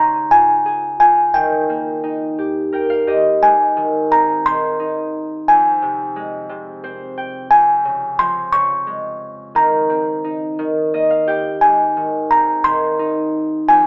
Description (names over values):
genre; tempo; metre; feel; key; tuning
children's music, lullaby; 58 BPM (dotted quarters); 6/8; straight; Ab major; A4 = 441 Hz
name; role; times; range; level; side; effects
music box; melody; 0.0-13.9 s; G5 to Db6; -14 LUFS; equal; none
concert harp; accompaniment; 0.0-13.9 s; F2 to G5; -20 LUFS; equal; none
room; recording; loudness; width
light reverb; band playing live in one room, telephone sound; -14 LUFS; side -28 dB against mid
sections
0.0-3.4 A section; 3.4-13.9 B section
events
harp fill 2.4-3.4, 6.5-7.5, 10.6-11.6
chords
0.0 Db; 1.3 Eb; 3.4 Ab; 5.5 Fm; 7.5 Db/F; 9.6 Cm7/Eb; 10.6 Eb; 11.6 Ab